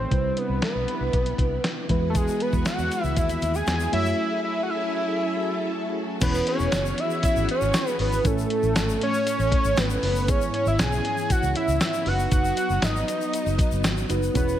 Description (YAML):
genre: 1980s-style pop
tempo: 118 BPM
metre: 4/4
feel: straight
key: E major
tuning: A4 = 440 Hz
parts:
  - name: fat analog lead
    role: melody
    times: 0.0-14.6 s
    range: G#4 to G#5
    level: -26 LUFS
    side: equal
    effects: none
  - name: mellow FM electric piano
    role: accompaniment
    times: 0.0-14.6 s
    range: G#2 to G#5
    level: -31 LUFS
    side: right 1 dB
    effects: chorus, phaser
  - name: string machine, violins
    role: sustained chords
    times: 0.0-14.6 s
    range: C3 to A4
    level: -31 LUFS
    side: equal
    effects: ensemble chorus
  - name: vintage muted fingered electric bass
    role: bass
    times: 0.0-14.5 s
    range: E1 to F#2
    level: -27 LUFS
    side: equal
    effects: none
  - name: clean 12-bit digital drum machine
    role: drums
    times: 0.1-14.5 s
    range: crash cymbal, hi-hat, kick drum, snare drum, tambourine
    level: -26 LUFS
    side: equal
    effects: gated reverb
  - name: tube shaker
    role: percussion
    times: 2.1-14.6 s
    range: none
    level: -41 LUFS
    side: left 9 dB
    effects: none
room: light reverb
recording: none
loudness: -21 LUFS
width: side -11 dB against mid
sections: 0.0-6.2 A section; 6.2-14.6 B section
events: break 4.2-6.2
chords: 0.1 Cmaj7; 1.9 Emaj7; 3.9 F#m7; 6.2 E6; 8.2 Amaj7; 10.3 E6/G#; 12.1 B/F#